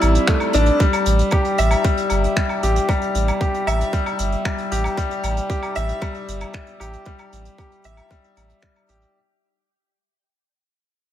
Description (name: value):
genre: piano and strings electronica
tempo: 115 BPM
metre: 4/4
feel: straight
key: unclear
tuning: A4 = 438 Hz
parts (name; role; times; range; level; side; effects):
- bright upright piano; riff; 0.0-9.2 s; G3 to E5; -21 LUFS; left 2 dB; ping-pong delay, shimmer reverb
- warm sub bass; bass; 0.0-9.0 s; G1 to A1; -20 LUFS; equal; sidechain pumping
- vintage brush drum kit; drums; 0.0-9.1 s; finger snaps, hi-hat, woodblock; -28 LUFS; right 1 dB; none
- electronic kick drum; drums; 0.3-8.7 s; none; -21 LUFS; right 1 dB; none
room: light reverb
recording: none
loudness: -17 LUFS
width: side -11 dB against mid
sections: 0.0-9.2 A section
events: drop 0.0-9.2; fade-out 0.8-9.2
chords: 0.0 Am7; 0.8 Gsus2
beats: 0.28 | 0.80 1.33 1.85 2.37 | 2.89 3.41 3.93 4.46 | 4.98 5.50 6.02 6.54 | 7.07 7.59 8.11 8.63